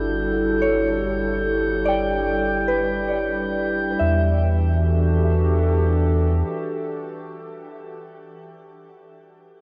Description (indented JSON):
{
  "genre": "ambient",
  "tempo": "free time",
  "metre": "none",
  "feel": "none",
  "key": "E dorian",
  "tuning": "A4 = 441 Hz",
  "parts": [
    { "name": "warbly tape-like pad", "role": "sustained chords", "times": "0.0-8.1 s", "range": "E3 to A4", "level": "-27 LUFS", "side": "equal", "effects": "chorus, built-in reverb, shimmer reverb" },
    { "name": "soft synth bell", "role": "arpeggios", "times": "0.0-9.6 s", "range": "F#4 to G5", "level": "-29 LUFS", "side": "equal", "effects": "chorus, phaser, diffuse ambient delay, shimmer reverb" },
    { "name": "warm sub bass", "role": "bass", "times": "0.0-6.4 s", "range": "G1 to E2", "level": "-25 LUFS", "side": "equal", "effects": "none" },
    { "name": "glass harmonica", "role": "texture", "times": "0.0-4.0 s", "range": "G4 to G6", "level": "-30 LUFS", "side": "equal", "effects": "shimmer reverb" }
  ],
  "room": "wet huge ambient reverb, RT60 7.5 s",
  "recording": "worn, warbling old tape, cassette tape, warbly pitch drift",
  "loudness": "-21 LUFS",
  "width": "mono",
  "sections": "0.0-4.0 A section; 4.0-7.3 B section",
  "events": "none",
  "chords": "0.0 G6; 4.0 Em11"
}